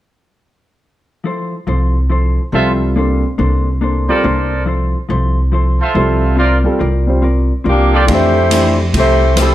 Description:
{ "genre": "jazz, big band swing", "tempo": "141 BPM", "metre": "4/4", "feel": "swing 65% on 8ths", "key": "F major", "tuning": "A4 = 441 Hz", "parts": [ { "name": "vintage hollow-body jazz guitar", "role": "accompaniment", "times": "1.2-9.5 s", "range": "F3 to D5", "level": "-20 LUFS", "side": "left 3 dB", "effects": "none" }, { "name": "upright bass", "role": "bass", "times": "1.7-9.5 s", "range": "C2 to F2", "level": "-14 LUFS", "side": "equal", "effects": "none" }, { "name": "warm concert grand piano", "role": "accompaniment", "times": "2.5-8.8 s", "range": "E3 to C5", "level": "-18 LUFS", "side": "equal", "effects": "none" }, { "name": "clear trumpet section", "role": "stabs", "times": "2.5-8.0 s", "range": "F4 to E5", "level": "-18 LUFS", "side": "right 2 dB", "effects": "none" }, { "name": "dark saxophone section", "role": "melody", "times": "7.7-9.5 s", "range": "F3 to C5", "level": "-13 LUFS", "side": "left 1 dB", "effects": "none" }, { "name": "swinging big-band drum kit", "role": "drums", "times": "8.1-9.5 s", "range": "hi-hat, kick drum, ride cymbal, rim click", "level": "-19 LUFS", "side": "right 1 dB", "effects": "none" } ], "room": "light reverb", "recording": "none", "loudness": "-12 LUFS", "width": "side -13 dB against mid", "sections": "1.2-8.1 A section; 8.1-9.5 B section", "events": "none", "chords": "1.2 Fmaj7; 3.0 Bbmaj9; 4.7 Fmaj7; 6.4 C9sus4; 8.1 Fmaj9" }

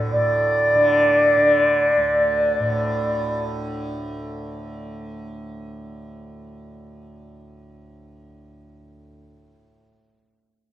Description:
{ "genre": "indian classical", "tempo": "free time", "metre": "none", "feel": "none", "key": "unclear", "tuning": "A4 = 440 Hz", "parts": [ { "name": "tanpura", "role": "drone", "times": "0.0-9.7 s", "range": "D2 to D3", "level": "-28 LUFS", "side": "right 1 dB", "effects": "none" }, { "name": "bansuri", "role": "melody", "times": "0.1-3.4 s", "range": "D5", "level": "-17 LUFS", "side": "equal", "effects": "none" } ], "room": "moderate recital hall reverb, RT60 1.7 s", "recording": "none", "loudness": "-17 LUFS", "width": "side -13 dB against mid", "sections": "0.1-3.2 A section", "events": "none", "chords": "none" }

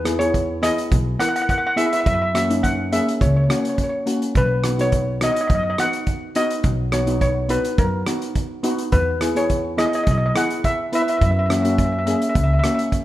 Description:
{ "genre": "calypso", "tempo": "105 BPM", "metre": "4/4", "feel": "straight", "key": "B major", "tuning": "A4 = 442 Hz", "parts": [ { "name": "steel pan", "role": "melody", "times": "0.0-12.8 s", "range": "A#4 to F#5", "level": "-22 LUFS", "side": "equal", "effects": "none" }, { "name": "steel pan", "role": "accompaniment", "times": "0.0-13.0 s", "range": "A#3 to B4", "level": "-23 LUFS", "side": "equal", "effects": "none" }, { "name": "upright bass", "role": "bass", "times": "0.0-12.6 s", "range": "B1 to F#2", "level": "-22 LUFS", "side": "equal", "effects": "none" }, { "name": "loose indie drum kit", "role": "drums", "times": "0.1-13.0 s", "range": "hi-hat, kick drum, rim click", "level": "-24 LUFS", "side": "right 1 dB", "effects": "none" } ], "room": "moderate recital hall reverb, RT60 1.5 s", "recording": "none", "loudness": "-17 LUFS", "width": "side -14 dB against mid", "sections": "0.0-13.0 A section", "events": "none", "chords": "0.0 Emaj7; 2.1 F#; 4.4 B; 8.9 E; 11.2 F#" }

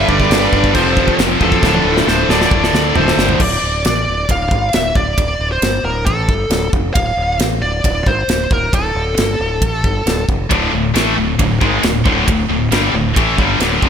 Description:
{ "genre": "heavy metal", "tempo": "135 BPM", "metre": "4/4", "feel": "straight", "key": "D minor", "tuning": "A4 = 441 Hz", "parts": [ { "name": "high-gain lead guitar", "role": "melody", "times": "0.0-10.2 s", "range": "A4 to F5", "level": "-18 LUFS", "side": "equal", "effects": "distortion, slapback echo, tape echo" }, { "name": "high-gain lead guitar", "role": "second line", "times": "0.0-3.1 s", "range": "F4 to B4", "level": "-24 LUFS", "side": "right 4 dB", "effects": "distortion" }, { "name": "warm chamber string section", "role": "sustained chords", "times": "0.0-3.4 s", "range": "D3 to E5", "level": "-28 LUFS", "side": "right 2 dB", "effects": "none" }, { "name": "heavy high-gain guitar", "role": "riff", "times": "0.0-3.4, 10.5-13.9 s", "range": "D2 to A3", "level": "-21 LUFS", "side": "right 1 dB", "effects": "distortion, slapback echo" }, { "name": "high-gain distorted guitar", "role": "riff", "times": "0.0-3.4, 10.5-13.9 s", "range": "D2 to A3", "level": "-18 LUFS", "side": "left 11 dB", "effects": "distortion" }, { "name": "scooped high-gain guitar", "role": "riff", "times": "0.0-3.4, 10.5-13.9 s", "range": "D2 to A3", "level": "-20 LUFS", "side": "right 10 dB", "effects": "distortion" }, { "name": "growling fingered electric bass", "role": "bass", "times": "0.0-13.9 s", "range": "D1 to D2", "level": "-20 LUFS", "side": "equal", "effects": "overdrive" }, { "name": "modern studio drum kit", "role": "drums", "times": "0.1-13.9 s", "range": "crash cymbal, kick drum, ride cymbal, snare drum, toms", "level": "-17 LUFS", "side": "equal", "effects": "none" } ], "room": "light reverb, small room ambience", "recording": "none", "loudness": "-12 LUFS", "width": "side -8 dB against mid", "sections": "0.0-3.4 A section; 3.4-13.9 B section", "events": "drum fill 1.6-3.4", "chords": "0.0 G; 0.7 F; 1.6 Dm; 2.3 D5" }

